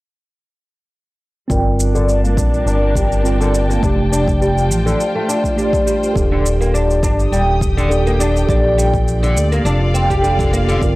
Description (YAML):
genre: organic downtempo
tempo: 103 BPM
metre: 4/4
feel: swing 54% on 16ths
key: G minor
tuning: A4 = 440 Hz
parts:
  - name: mellow tine electric piano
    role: accompaniment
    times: 1.5-11.0 s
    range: A3 to Bb4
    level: -22 LUFS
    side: right 2 dB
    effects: medium stereo tremolo, sidechain pumping, low-pass filter, tape echo
  - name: rich studio string section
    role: sustained chords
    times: 1.5-11.0 s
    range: Bb2 to Eb6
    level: -25 LUFS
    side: left 1 dB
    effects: sidechain pumping, low-pass filter
  - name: oud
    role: arpeggios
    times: 1.5-10.8 s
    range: D3 to G4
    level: -19 LUFS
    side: left 1 dB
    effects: low-pass filter, tape echo
  - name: smooth gliding synth bass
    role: bass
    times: 1.5-11.0 s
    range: Eb1 to D2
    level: -16 LUFS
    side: equal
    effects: transformer saturation
  - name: electronic kick drum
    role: drums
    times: 1.5-10.9 s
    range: none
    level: -20 LUFS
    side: equal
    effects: overdrive, studio reverb
  - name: shaker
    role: drums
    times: 1.5-10.9 s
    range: none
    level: -28 LUFS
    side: right 2 dB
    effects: overdrive, studio reverb
room: small room ambience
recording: dry, gritty hardware recording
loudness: -13 LUFS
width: side -19 dB against mid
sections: 1.5-11.0 A section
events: filter sweep on analog synth bass 1.5-11.0; filter sweep on oud 1.5-11.0; filter sweep on string section 1.5-11.0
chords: 1.5 Gmadd9; 3.8 Fadd9; 6.2 Eb; 8.5 Bb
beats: | 1.50 2.08 2.66 3.24 | 3.83 4.41 4.99 5.57 | 6.16 6.74 7.32 7.90 | 8.48 9.07 9.65 10.23 | 10.81